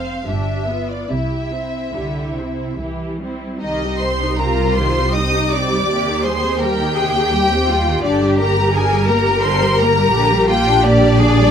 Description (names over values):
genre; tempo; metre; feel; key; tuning
classical, slow romantic movement for string orchestra; 69-87 BPM; 3/4; rubato; C major, C minor from 3.6 s; A4 = 437 Hz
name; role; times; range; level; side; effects
warm symphonic violin section; melody; 0.0-11.5 s; D5 to Eb6; -20 LUFS; left 2 dB; none
warm symphonic violin section; second line; 0.0-11.5 s; D4 to F5; -22 LUFS; left 4 dB; none
clear symphonic viola section; accompaniment; 0.0-11.5 s; C3 to C5; -22 LUFS; equal; none
rich symphonic cello section; bass; 0.0-11.5 s; F2 to Bb4; -23 LUFS; right 2 dB; none
rich symphonic double bass section; bass; 0.0-11.5 s; F1 to Eb2; -20 LUFS; right 2 dB; none
room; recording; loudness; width
light reverb; close, detailed microphones; -14 LUFS; side -8 dB against mid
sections
0.0-3.6 A section; 3.6-11.5 B section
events
none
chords
0.3 G7; 1.1 C; 3.6 Cm; 5.9 Cm/Eb; 8.0 Gm; 10.1 Gm/Bb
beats
0.26 | 1.09 1.93 2.79 | 3.62 4.38 5.15 | 5.88 6.61 7.33 | 8.04 8.73 9.43 | 10.13 10.84